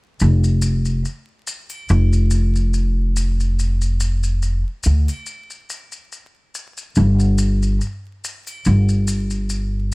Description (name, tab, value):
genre	trip hop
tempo	71 BPM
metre	4/4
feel	swing 55% on 16ths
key	unclear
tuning	A4 = 440 Hz
part	upright bass	bass	0.2-9.9 s	F1 to D2	-16 LUFS	equal	none
part	maracas and triangle	percussion	0.2-9.7 s	none	-31 LUFS	left 2 dB	none
room	studio ambience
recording	vinyl crackle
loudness	-16 LUFS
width	side -26 dB against mid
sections	0.2-9.9 A section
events	none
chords	none